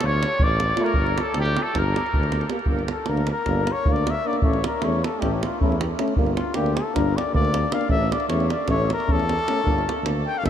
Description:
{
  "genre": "balkan folk, Balkan brass band",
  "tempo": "310 BPM (eighths)",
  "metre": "9/8",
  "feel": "straight",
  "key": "G dorian sharp4",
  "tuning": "A4 = 439 Hz",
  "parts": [
    { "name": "clear trumpet", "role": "melody", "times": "0.0-2.5 s", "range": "G4 to D5", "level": "-28 LUFS", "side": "equal", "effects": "diffuse ambient delay" },
    { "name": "mellow trumpet", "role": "second line", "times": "0.0-10.5 s", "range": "E4 to G5", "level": "-26 LUFS", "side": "left 3 dB", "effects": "none" },
    { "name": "warm tuba", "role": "bass", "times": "0.0-10.5 s", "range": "G1 to E2", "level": "-25 LUFS", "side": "equal", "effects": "none" },
    { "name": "davul", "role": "percussion", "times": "0.0-10.5 s", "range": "none", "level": "-26 LUFS", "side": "right 2 dB", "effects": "none" },
    { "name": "mellow euphonium", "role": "accompaniment", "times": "0.8-10.5 s", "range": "C#4 to G4", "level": "-30 LUFS", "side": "left 5 dB", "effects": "none" },
    { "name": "warm euphonium", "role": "accompaniment", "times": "0.8-10.5 s", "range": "A3 to Bb3", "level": "-31 LUFS", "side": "right 4 dB", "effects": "none" }
  ],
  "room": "moderate huge ambient reverb, RT60 9.7 s",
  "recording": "dreamy mix soaked in reverb",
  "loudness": "-20 LUFS",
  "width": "side -9 dB against mid",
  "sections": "0.0-2.7 A section; 2.7-10.5 B section",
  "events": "trumpet solo 2.7-10.5",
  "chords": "0.0 Dm; 1.0 Gm; 4.4 A; 6.2 Gm; 7.9 A; 9.7 Gm"
}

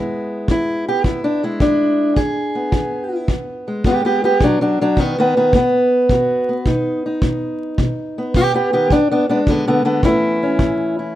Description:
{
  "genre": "acoustic country blues, solo or duo",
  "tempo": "107 BPM",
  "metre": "4/4",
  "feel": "swing 68% on 8ths",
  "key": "E major",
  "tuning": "A4 = 443 Hz",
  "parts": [
    { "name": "fingerpicked steel-string acoustic guitar", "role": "melody", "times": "0.0-11.2 s", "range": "E2 to G#4", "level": "-16 LUFS", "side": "equal", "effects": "none" },
    { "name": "kick drum", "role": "drums", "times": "0.5-10.8 s", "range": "none", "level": "-19 LUFS", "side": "equal", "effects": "none" }
  ],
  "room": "light reverb, studio reverb",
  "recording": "rough home demo mix, vinyl crackle",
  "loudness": "-15 LUFS",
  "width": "side -13 dB against mid",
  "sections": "0.0-11.2 A section",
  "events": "none",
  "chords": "0.0 E; 4.4 B; 8.9 E; 10.0 A"
}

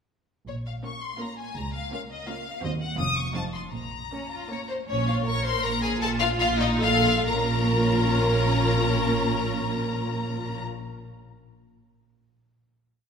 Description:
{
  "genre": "quick classical-period movement for string orchestra",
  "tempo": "131-171 BPM",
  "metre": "3/4",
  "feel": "rubato",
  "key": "Bb minor",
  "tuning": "A4 = 440 Hz",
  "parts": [
    { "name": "warm studio violin section", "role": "melody", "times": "0.5-10.6 s", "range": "Db5 to Eb6", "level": "-29 LUFS", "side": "left 4 dB", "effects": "none" },
    { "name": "rich studio double bass section", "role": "bass", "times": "0.5-10.6 s", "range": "F1 to Eb2", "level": "-29 LUFS", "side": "right 1 dB", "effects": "none" },
    { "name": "warm studio cello section", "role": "bass", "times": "0.5-10.6 s", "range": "Db2 to Bb2", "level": "-30 LUFS", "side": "right 3 dB", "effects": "none" },
    { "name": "warm studio violin section", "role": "second line", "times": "0.8-10.6 s", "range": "Db4 to F5", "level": "-30 LUFS", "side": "left 1 dB", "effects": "none" },
    { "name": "warm studio viola section", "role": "accompaniment", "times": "0.8-10.6 s", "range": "Bb3 to Db5", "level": "-32 LUFS", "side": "equal", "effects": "none" }
  ],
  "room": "wet concert hall reverb, RT60 2.2 s",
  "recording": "minimal, uncompressed stereo recording, lossy compression artefacts",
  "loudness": "-23 LUFS",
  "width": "side -6 dB against mid",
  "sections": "0.5-4.9 A section; 4.9-7.3 coda; 7.3-9.8 final chord",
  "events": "slowing down 4.3-7.3",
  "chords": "0.5 Bbm; 1.6 Bbm/Db; 2.6 Cm7b5/Eb; 3.0 Bbm/F; 3.4 F7(no3); 3.7 Bbm"
}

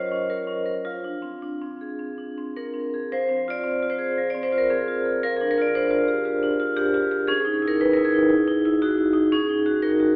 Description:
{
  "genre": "classical, contemporary piece for solo vibraphone",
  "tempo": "104-120 BPM",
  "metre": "4/4",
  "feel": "rubato",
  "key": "F dorian",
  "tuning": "A4 = 441 Hz",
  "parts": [
    { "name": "vibraphone with medium hard mallets", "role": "solo", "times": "0.0-10.2 s", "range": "F3 to Eb5", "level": "-20 LUFS", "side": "equal", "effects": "none" }
  ],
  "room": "wet stone room reverb, RT60 1.3 s",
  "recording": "heard from further back in the room, telephone sound",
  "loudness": "-20 LUFS",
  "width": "side -26 dB against mid",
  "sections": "0.0-3.1 A section; 3.1-10.2 A section",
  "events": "none",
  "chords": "0.0 Gbmaj7; 0.9 Fm6; 5.2 Fm69; 7.3 Dbmadd9; 9.3 Gb69/Db"
}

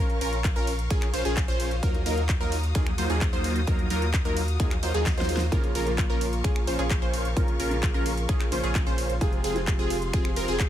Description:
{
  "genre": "EDM, festival progressive house",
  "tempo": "130 BPM",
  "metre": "4/4",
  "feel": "straight",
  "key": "Bb minor",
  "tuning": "A4 = 440 Hz",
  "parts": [
    { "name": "rich studio string section", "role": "sustained chords", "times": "0.0-10.7 s", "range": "Gb4 to Eb6", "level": "-38 LUFS", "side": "left 2 dB", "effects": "sidechain pumping" },
    { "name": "wide unison pluck", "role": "arpeggios", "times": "0.0-10.7 s", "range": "Ab4 to C5", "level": "-34 LUFS", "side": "right 1 dB", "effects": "sidechain pumping, tape echo" },
    { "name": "supersaw stab", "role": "riff", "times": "0.0-10.7 s", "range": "Gb3 to C5", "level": "-30 LUFS", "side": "equal", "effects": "phaser, sidechain pumping, tape echo" },
    { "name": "saturated sub bass", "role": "bass", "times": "0.0-10.7 s", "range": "F1 to Eb2", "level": "-30 LUFS", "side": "equal", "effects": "sidechain pumping" },
    { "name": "big-room dance drum kit", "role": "drums", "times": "0.1-10.7 s", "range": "finger snaps, handclaps, hi-hat, ride cymbal, snare drum", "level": "-34 LUFS", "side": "equal", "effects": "overdrive, small room ambience" },
    { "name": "electronic kick drum", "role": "drums", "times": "0.4-10.7 s", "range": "none", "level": "-25 LUFS", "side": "equal", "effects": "overdrive, small room ambience" },
    { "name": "clear concert grand piano", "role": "accompaniment", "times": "5.5-10.7 s", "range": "C3 to F4", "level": "-33 LUFS", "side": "right 1 dB", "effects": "sidechain pumping, tape echo" }
  ],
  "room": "little or no reverb",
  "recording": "none",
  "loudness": "-23 LUFS",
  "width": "side -11 dB against mid",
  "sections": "0.0-10.7 A section",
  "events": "drum fill 5.1-5.5",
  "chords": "0.0 Bbm; 1.8 Ebmadd9; 5.5 Bbm; 9.2 Fm"
}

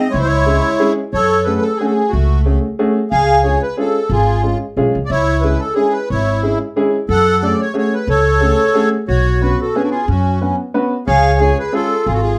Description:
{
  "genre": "musette waltz",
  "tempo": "182 BPM",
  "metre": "3/4",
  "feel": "swing 54% on 8ths",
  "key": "F# harmonic minor",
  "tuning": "A4 = 438 Hz",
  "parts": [
    { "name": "accordion", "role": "melody", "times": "0.0-12.4 s", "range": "A3 to F#5", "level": "-18 LUFS", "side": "equal", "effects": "light tremolo tuning" },
    { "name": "bright clarinet", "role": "second line", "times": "0.0-0.9, 9.1-12.4 s", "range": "G#3 to C#5", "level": "-24 LUFS", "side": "equal", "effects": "none" },
    { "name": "upright bass", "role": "bass", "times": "0.1-12.4 s", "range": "G#1 to F#2", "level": "-19 LUFS", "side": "equal", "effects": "none" },
    { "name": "clear upright piano", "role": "accompaniment", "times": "0.5-11.9 s", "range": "G#3 to B4", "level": "-21 LUFS", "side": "equal", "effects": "none" }
  ],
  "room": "wet small room reverb, RT60 0.5 s",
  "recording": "heard from further back in the room",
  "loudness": "-15 LUFS",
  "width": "mono",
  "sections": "0.0-1.1 A section; 1.1-12.4 B section",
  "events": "none",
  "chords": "0.1 C#m; 1.1 F#madd9; 3.1 C#; 5.1 C#m; 7.1 F#madd9; 9.1 Bsus2; 11.1 C#"
}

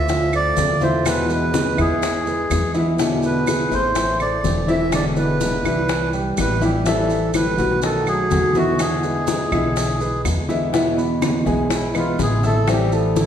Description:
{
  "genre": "latin, Cuban son and guajira",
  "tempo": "124 BPM",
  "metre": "4/4",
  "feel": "straight",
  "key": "unclear",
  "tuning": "A4 = 439 Hz",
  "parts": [
    { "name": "melodica", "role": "melody", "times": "0.0-13.3 s", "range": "B3 to E5", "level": "-23 LUFS", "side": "right 1 dB", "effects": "none" },
    { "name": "nylon-string guitar", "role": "accompaniment", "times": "0.0-13.3 s", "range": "B2 to F#4", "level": "-22 LUFS", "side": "left 2 dB", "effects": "none" },
    { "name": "upright bass", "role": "bass", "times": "0.0-13.3 s", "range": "E1 to E2", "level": "-25 LUFS", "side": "equal", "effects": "none" },
    { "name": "warm grand piano", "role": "arpeggios", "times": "0.1-13.3 s", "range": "D#3 to E6", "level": "-24 LUFS", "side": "right 2 dB", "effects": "none" },
    { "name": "bongos", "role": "percussion", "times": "0.1-13.3 s", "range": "none", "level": "-28 LUFS", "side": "left 4 dB", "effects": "none" },
    { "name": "congas", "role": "percussion", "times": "0.1-13.3 s", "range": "none", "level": "-29 LUFS", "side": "equal", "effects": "none" },
    { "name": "maracas", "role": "percussion", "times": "0.1-13.3 s", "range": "none", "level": "-33 LUFS", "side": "right 3 dB", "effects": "none" },
    { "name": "claves", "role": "percussion", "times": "0.3-12.9 s", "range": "none", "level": "-34 LUFS", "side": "right 4 dB", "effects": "none" }
  ],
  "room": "wet recital hall reverb, RT60 1.5 s",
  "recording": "recorded in a church or concert hall",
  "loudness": "-17 LUFS",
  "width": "side -9 dB against mid",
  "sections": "0.0-10.7 A section; 10.7-13.3 B section",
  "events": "melodica solo 10.7-13.3",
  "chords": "0.1 Dm7; 1.1 E; 3.0 E7; 4.0 Am; 4.9 E7; 5.9 Cmaj7; 6.9 Am7; 7.8 B7; 8.8 E7; 10.7 E; 12.7 Am7"
}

